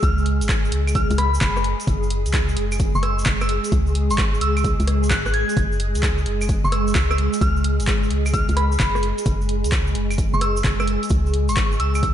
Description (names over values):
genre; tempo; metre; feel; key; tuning
UK garage, two-step garage; 130 BPM; 4/4; swing 67% on 16ths; unclear; A4 = 440 Hz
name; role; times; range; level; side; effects
soft synth bell; melody; 0.0-12.1 s; B5 to G#6; -26 LUFS; right 1 dB; chorus, tape echo
soft string machine; sustained chords; 0.0-12.1 s; G#3 to G#4; -26 LUFS; equal; phaser, ensemble chorus, vintage 12-bit sampler grit, sidechain pumping
organ-like FM bass; bass; 0.0-12.1 s; F#1 to C#2; -22 LUFS; equal; none
electronic kick drum; drums; 0.0-12.1 s; none; -23 LUFS; equal; overdrive
punchy analog drum machine; drums; 0.0-12.1 s; claves, handclaps, hi-hat, rim click; -28 LUFS; right 1 dB; overdrive
tube shaker; percussion; 0.0-12.1 s; none; -37 LUFS; right 3 dB; none
room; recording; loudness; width
light reverb; nothing above 11.0 kHz; -18 LUFS; side -10 dB against mid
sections
0.0-12.1 A section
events
none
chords
0.0 F#sus2; 3.7 C#5; 5.6 F#sus2; 11.1 C#5